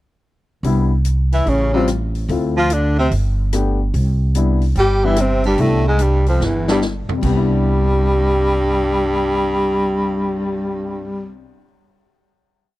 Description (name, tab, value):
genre	jazz, small-group swing and bop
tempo	146 BPM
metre	4/4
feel	swing 66% on 8ths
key	C major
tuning	A4 = 440 Hz
part	dark upright piano	accompaniment	0.6-11.6 s	C3 to G4	-23 LUFS	left 5 dB	none
part	upright bass	bass	0.6-11.4 s	G1 to D2	-18 LUFS	right 1 dB	none
part	swinging big-band drum kit	drums	0.6-10.4 s	crash cymbal, cymbal swell, hi-hat, kick drum, rim click, snare drum, toms	-29 LUFS	equal	none
part	breathy tenor saxophone	melody	1.3-11.3 s	E3 to G4	-18 LUFS	left 1 dB	none
part	clear baritone saxophone	second line	1.3-11.3 s	E2 to G3	-23 LUFS	right 3 dB	none
room	little or no reverb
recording	dry, close 1970s-style studio recording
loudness	-15 LUFS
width	side -16 dB against mid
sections	0.6-7.2 A section; 7.2-10.5 final chord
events	drum fill 6.4-7.2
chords	0.6 Cmaj9; 1.5 A7alt; 2.3 Dm7; 3.1 G; 3.9 Cmaj9